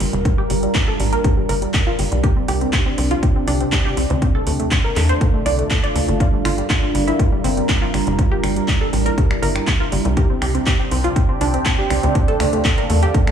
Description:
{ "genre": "progressive house", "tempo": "121 BPM", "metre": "4/4", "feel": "straight", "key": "G dorian", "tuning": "A4 = 439 Hz", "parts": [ { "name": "evolving wavetable pad", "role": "sustained chords", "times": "0.0-13.3 s", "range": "C3 to Bb4", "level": "-23 LUFS", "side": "right 1 dB", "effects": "phaser, built-in reverb, sidechain pumping" }, { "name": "wide unison pluck", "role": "arpeggios", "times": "0.0-13.3 s", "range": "G3 to D5", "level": "-23 LUFS", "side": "right 1 dB", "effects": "sidechain pumping, dub echo" }, { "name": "tight sequencer bass", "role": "bass", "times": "0.0-13.1 s", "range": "F1 to E2", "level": "-20 LUFS", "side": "equal", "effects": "tube saturation, sidechain pumping" }, { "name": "house drum kit", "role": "drums", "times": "0.0-13.3 s", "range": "finger snaps, handclaps, hi-hat", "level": "-25 LUFS", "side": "equal", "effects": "none" }, { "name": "electronic kick drum", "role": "drums", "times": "0.3-13.2 s", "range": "none", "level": "-18 LUFS", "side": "equal", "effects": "none" } ], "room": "light reverb, digital ambience", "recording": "small room reverb", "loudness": "-15 LUFS", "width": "side -8 dB against mid", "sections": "0.0-13.3 A section", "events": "filter sweep on ambient pad 0.0-13.3", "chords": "0.0 Gm7; 2.2 Csus2; 4.2 Dm; 6.2 Gm7; 10.2 Csus2; 12.2 Dm" }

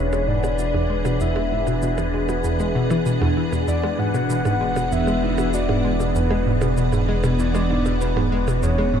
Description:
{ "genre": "ambient, sequencer-driven space music", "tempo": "97 BPM", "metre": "4/4", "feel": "straight", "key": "unclear", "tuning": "A4 = 440 Hz", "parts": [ { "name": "soft octave-layered synth lead", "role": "melody", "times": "0.0-9.0 s", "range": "B4 to F#5", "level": "-27 LUFS", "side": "left 2 dB", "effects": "chorus, analog delay" }, { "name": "evolving wavetable pad", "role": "sustained chords", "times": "0.0-9.0 s", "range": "E3 to F#5", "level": "-24 LUFS", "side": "equal", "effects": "ensemble chorus, built-in reverb, phaser" }, { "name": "analog pluck", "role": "riff", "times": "0.0-9.0 s", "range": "E2 to G#3", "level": "-23 LUFS", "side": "equal", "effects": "chorus, analog delay" }, { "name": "round analog bass", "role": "bass", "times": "0.0-9.0 s", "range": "E1", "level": "-26 LUFS", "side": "equal", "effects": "none" }, { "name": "wind-like tuned noise texture", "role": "texture", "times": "0.0-9.0 s", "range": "B4", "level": "-32 LUFS", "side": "right 2 dB", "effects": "built-in reverb" }, { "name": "percussion blips and shaker", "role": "percussion", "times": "0.1-8.9 s", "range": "none", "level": "-33 LUFS", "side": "right 5 dB", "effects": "overdrive, analog delay" } ], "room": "moderate huge ambient reverb, RT60 8.4 s", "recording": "dark, warm production", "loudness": "-18 LUFS", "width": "side -8 dB against mid", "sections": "0.0-9.0 A section", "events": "none", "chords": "0.0 E7" }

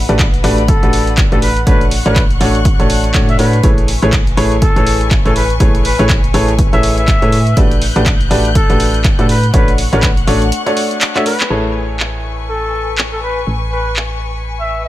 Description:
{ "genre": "piano house", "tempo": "122 BPM", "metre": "4/4", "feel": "swing 58% on 16ths", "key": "A major", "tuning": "A4 = 440 Hz", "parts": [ { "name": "dark chamber string section", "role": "sustained chords", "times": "0.0-14.9 s", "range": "B4 to G6", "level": "-25 LUFS", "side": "left 4 dB", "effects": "sidechain pumping" }, { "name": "solid FM bass", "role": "bass", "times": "0.0-14.9 s", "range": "A1 to A2", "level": "-17 LUFS", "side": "equal", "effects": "sidechain pumping" }, { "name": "bright upright piano", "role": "riff", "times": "0.1-14.9 s", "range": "A3 to D5", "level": "-17 LUFS", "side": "equal", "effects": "sidechain pumping, low-pass filter, tape echo" }, { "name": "punchy analog drum machine", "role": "drums", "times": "0.1-14.1 s", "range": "handclaps, hi-hat", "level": "-20 LUFS", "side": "equal", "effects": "none" }, { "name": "electronic kick drum", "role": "drums", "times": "0.2-10.1 s", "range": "none", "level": "-13 LUFS", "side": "equal", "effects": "none" }, { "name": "growling trumpet", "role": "melody", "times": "0.7-14.9 s", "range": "A4 to E5", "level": "-20 LUFS", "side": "left 1 dB", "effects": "tape echo" } ], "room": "small room reverb", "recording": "none", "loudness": "-10 LUFS", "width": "side -15 dB against mid", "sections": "0.0-11.5 A section; 11.5-14.9 B section", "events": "break 10.5-11.5; drum fill 11.1-11.5; band accent 11.4", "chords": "0.0 Gmaj7/A; 1.7 Dmaj7/A; 3.6 Amaj9; 7.6 Gmaj7/A; 9.5 Dmaj7/A; 11.5 Amaj9" }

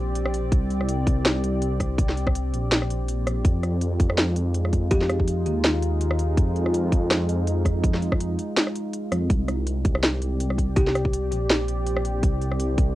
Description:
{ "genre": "half-time drum and bass", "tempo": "164 BPM", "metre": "4/4", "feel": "swing 55% on 16ths, half-time", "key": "C minor", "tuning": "A4 = 439 Hz", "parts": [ { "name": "deep dark ambient pad", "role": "sustained chords", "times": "0.0-12.9 s", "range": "Ab3 to D5", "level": "-30 LUFS", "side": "equal", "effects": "chorus, built-in reverb, sidechain pumping" }, { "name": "dark detuned saw bass", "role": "bass", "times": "0.0-12.9 s", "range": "Bb1 to F2", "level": "-24 LUFS", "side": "equal", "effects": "none" }, { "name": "drum and bass drum kit", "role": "drums", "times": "0.2-12.9 s", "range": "hi-hat, rim click, snare drum", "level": "-24 LUFS", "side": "equal", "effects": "cassette tape" }, { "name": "electronic kick drum", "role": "drums", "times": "0.5-12.9 s", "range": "none", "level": "-22 LUFS", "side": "equal", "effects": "cassette tape" }, { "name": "kalimba", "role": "melody", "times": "4.9-5.4, 10.8-11.3 s", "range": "G4", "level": "-30 LUFS", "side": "left 1 dB", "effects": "analog delay" } ], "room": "little or no reverb", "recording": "home recording on cassette", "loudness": "-21 LUFS", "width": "side -16 dB against mid", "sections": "0.0-12.9 A section", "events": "none", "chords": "0.0 Csus2; 3.5 Fm7; 9.3 Csus2" }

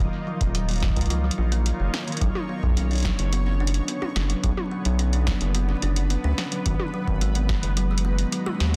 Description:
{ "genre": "IDM", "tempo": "108 BPM", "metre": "4/4", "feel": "straight", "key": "unclear", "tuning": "A4 = 440 Hz", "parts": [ { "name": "granular cloud pad", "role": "sustained chords", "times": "0.0-8.8 s", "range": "D3 to C#5", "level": "-36 LUFS", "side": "equal", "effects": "built-in reverb" }, { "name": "kalimba", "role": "arpeggios", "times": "0.0-8.7 s", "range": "D#3 to E#4", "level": "-32 LUFS", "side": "equal", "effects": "low-pass filter, digital delay" }, { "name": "round analog bass", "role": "bass", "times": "0.0-8.8 s", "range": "D#1 to D#2", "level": "-25 LUFS", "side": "equal", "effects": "none" }, { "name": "electro analog drum machine", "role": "drums", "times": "0.4-8.7 s", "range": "hi-hat, snare drum, toms", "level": "-33 LUFS", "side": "equal", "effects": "none" }, { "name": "electronic kick drum", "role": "drums", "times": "0.4-7.6 s", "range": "none", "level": "-28 LUFS", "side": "equal", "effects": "none" } ], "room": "little or no reverb", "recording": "dense, heavily limited modern master", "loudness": "-24 LUFS", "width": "mono", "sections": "0.0-8.8 A section", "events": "none", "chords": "0.0 D#madd9; 2.2 Bmadd9; 6.7 G#m7" }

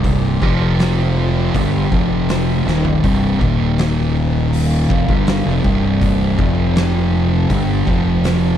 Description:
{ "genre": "stoner and doom metal", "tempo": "81 BPM", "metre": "4/4", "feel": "straight", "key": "unclear", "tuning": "A4 = 439 Hz", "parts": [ { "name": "overtone-sweeping drone", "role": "sustained chords", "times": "0.0-8.6 s", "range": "C4 to F5", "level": "-30 LUFS", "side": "right 1 dB", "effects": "chorus, built-in reverb" }, { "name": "thick fuzz guitar", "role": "riff", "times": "0.0-8.6 s", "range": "C2 to G3", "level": "-19 LUFS", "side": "left 7 dB", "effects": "distortion" }, { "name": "thick fuzz guitar", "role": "riff", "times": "0.0-8.6 s", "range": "C2 to G3", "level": "-19 LUFS", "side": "right 7 dB", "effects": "distortion" }, { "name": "growling fingered electric bass", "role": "bass", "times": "0.0-8.6 s", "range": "C1 to G1", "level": "-21 LUFS", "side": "equal", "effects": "overdrive" }, { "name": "oversized low-tuned drum kit", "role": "drums", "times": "0.0-8.4 s", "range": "hi-hat, kick drum, snare drum, toms", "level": "-21 LUFS", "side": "equal", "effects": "none" } ], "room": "small room reverb", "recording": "none", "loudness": "-14 LUFS", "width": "side -10 dB against mid", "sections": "0.0-8.6 A section", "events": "drum fill 2.7-3.0", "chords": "0.4 F5; 1.5 C5; 1.9 F5; 2.7 Cm; 3.4 Eb5; 4.9 C5; 6.4 F5; 7.5 C5; 7.9 F5" }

